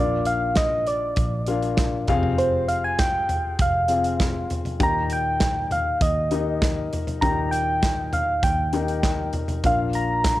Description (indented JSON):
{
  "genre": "piano-driven pop",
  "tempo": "99 BPM",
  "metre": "4/4",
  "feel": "straight",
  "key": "Eb major",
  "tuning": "A4 = 440 Hz",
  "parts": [
    { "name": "soft struck synth lead", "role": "melody", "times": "0.0-10.4 s", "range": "C5 to Bb5", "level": "-24 LUFS", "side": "right 1 dB", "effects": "chorus, cassette tape" },
    { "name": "dark grand piano", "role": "accompaniment", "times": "0.0-10.4 s", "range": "Bb2 to G5", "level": "-27 LUFS", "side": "left 5 dB", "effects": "cassette tape" },
    { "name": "vintage muted picked electric bass", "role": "bass", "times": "0.0-10.4 s", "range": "F1 to Eb2", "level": "-28 LUFS", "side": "right 1 dB", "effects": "none" },
    { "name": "modern studio drum kit", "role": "drums", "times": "0.3-10.4 s", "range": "hi-hat, kick drum, snare drum, toms", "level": "-25 LUFS", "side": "right 1 dB", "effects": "cassette tape" }
  ],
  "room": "light reverb",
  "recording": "home recording on cassette",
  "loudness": "-20 LUFS",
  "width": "side -15 dB against mid",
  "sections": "0.0-10.4 A section",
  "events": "none",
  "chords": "0.0 Bb; 2.1 Fm; 4.8 Eb; 9.6 Bb"
}